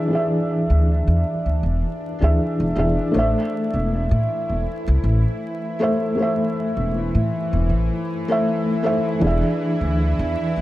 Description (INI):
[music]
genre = trip hop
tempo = 79 BPM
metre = 4/4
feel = swing 56% on 16ths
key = A harmonic minor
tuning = A4 = 443 Hz
[part]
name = felt-muted upright piano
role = accompaniment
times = 0.0-10.6 s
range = E3 to E5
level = -21 LUFS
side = equal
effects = harmonic tremolo, low-pass filter, tape echo
[part]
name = bowed-like drone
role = texture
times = 0.0-10.6 s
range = E3 to E4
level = -29 LUFS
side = left 1 dB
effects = built-in reverb
[part]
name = upright bass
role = bass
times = 0.7-10.6 s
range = E1 to A2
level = -19 LUFS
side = equal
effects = none
[sound]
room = light reverb, studio reverb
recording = vinyl crackle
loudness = -18 LUFS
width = side -16 dB against mid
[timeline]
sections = 0.0-10.6 A section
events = none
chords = 0.0 E7; 3.1 Am; 9.2 E7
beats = | 0.11 0.87 1.63 2.39 | 3.15 3.90 4.66 5.42 | 6.18 6.94 7.70 8.46 | 9.22 9.98